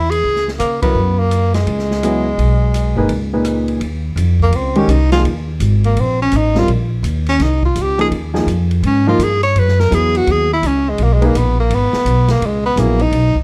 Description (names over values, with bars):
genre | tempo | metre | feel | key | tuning
modal jazz | 168 BPM | 4/4 | swing 64% on 8ths | Eb phrygian | A4 = 438 Hz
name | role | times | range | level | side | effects
clear tenor saxophone | melody | 0.0-13.4 s | Ab3 to Db5 | -19 LUFS | equal | plate reverb
upright bass | bass | 0.0-13.4 s | G1 to Db3 | -18 LUFS | equal | none
open jazz drum kit | drums | 0.1-13.4 s | hi-hat, kick drum, ride cymbal, rim click, snare drum | -30 LUFS | equal | none
warm concert grand piano | accompaniment | 0.8-13.0 s | Bb2 to Cb5 | -20 LUFS | equal | none
room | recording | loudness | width
light reverb | dark, warm production | -15 LUFS | mono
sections
0.0-3.8 A section; 3.8-13.4 B section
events
band accent 0.8; tenor saxophone solo 3.8-13.4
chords
0.0 Gb13sus4; 3.8 Eb13sus4; 9.5 Gb9sus4